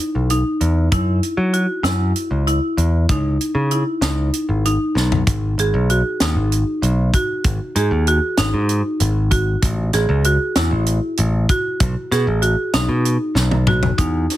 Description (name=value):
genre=progressive instrumental, band music in an uneven meter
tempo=193 BPM (eighths)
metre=7/8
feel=straight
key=unclear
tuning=A4 = 440 Hz
part: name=marimba with medium hard mallets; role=arpeggios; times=0.0-14.4 s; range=D#4 to G#4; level=-21 LUFS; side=equal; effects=none
part: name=modern bright picked electric bass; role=bass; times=0.2-14.3 s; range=G#1 to F#3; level=-18 LUFS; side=equal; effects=none
part: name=tight funk drum kit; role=drums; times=0.3-14.4 s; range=hi-hat, kick drum, snare drum, toms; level=-20 LUFS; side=equal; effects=none
room=light reverb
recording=heavily compressed radio sound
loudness=-16 LUFS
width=side -14 dB against mid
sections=0.0-5.3 A section; 5.3-14.0 B section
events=drum fill 5.0-5.3, 13.4-14.0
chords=0.0 E5; 0.9 F#5; 3.1 C#7sus2; 5.3 G#m7; 7.4 D#madd11/G#; 9.6 A6; 11.8 B7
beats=0.30 0.61 | 0.92 1.23 1.54 1.85 2.16 2.47 2.78 | 3.09 3.40 3.72 4.03 4.34 4.65 4.96 | 5.27 5.58 5.89 6.20 6.51 6.83 7.14 | 7.45 7.76 8.07 8.38 8.69 9.00 9.31 | 9.63 9.94 10.25 10.56 10.87 11.18 11.49 | 11.80 12.12 12.43 12.74 13.05 13.36 13.67 | 13.98 14.29